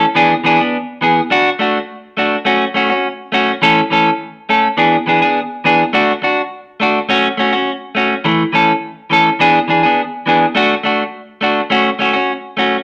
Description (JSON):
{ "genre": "highlife", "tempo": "104 BPM", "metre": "4/4", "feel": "straight", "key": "A major", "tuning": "A4 = 440 Hz", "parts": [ { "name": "clean electric guitar", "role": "solo", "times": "0.0-12.8 s", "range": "E3 to A4", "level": "-14 LUFS", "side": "equal", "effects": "none" } ], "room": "wet large studio reverb, RT60 1.0 s", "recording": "none", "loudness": "-14 LUFS", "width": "mono", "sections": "0.0-12.8 A section", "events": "none", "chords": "0.2 E7; 1.3 D/A; 2.5 F#m; 3.6 A; 4.8 E7; 5.9 D/A; 7.1 F#m; 8.2 A; 9.4 E7; 10.6 D/A; 11.7 F#m", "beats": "0.15 0.73 | 1.31 1.89 2.46 3.04 | 3.62 4.20 4.78 5.36 | 5.93 6.51 7.09 7.67 | 8.25 8.82 9.40 9.98 | 10.56 11.14 11.71 12.29" }